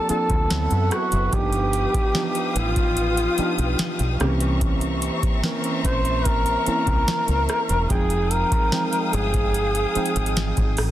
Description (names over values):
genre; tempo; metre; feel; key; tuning
contemporary R&B; 73 BPM; 4/4; straight; unclear; A4 = 440 Hz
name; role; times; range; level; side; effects
mellow duduk; melody; 0.0-10.8 s; F4 to C5; -24 LUFS; equal; tape echo
soft electric-piano-like synth keys; accompaniment; 0.0-10.9 s; Db3 to G5; -27 LUFS; right 2 dB; chorus
warm studio string section; sustained chords; 0.0-10.9 s; Bb3 to Eb6; -30 LUFS; left 3 dB; none
deep dub fingered electric bass; bass; 0.1-10.9 s; E1 to F#2; -24 LUFS; equal; none
booming analog drum machine; drums; 0.1-10.9 s; hi-hat, kick drum, rim click, snare drum; -24 LUFS; equal; none
room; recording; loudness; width
digital ambience; dense, heavily limited modern master; -19 LUFS; side -13 dB against mid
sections
0.0-10.9 A section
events
none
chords
0.0 Bbmaj9; 0.5 D13; 1.3 G7b13; 4.2 C7b9; 7.9 Fm9